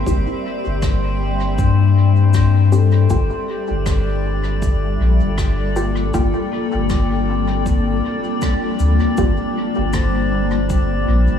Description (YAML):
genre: ambient dub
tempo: 79 BPM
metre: 4/4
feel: swing 58% on 16ths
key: G dorian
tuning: A4 = 441 Hz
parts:
  - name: granular cloud pad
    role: sustained chords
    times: 0.0-11.4 s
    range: G3 to A5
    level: -23 LUFS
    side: left 2 dB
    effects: built-in reverb
  - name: vibraphone with medium mallets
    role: arpeggios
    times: 0.0-11.4 s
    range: Bb3 to G5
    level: -27 LUFS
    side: left 2 dB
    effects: dub echo
  - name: warm sub bass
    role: bass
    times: 0.0-11.4 s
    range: G1 to G2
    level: -16 LUFS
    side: left 2 dB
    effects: none
  - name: drifting glass-harmonics texture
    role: texture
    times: 0.0-11.4 s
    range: C4 to D5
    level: -28 LUFS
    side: left 2 dB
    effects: chorus, built-in reverb
  - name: filtered dub chord stab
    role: stabs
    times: 0.1-9.4 s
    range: Bb3 to G4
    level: -28 LUFS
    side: left 1 dB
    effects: wide subtle chorus, dub echo
  - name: cabasa and rim click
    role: drums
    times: 0.1-10.9 s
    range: none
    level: -35 LUFS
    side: left 1 dB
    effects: dub echo
  - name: electronic kick drum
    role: drums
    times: 0.1-10.9 s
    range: none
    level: -20 LUFS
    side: equal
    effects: none
room: small room ambience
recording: studio reverb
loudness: -15 LUFS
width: side -8 dB against mid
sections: 0.0-11.4 A section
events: none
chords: 0.0 C/G; 3.1 Gm7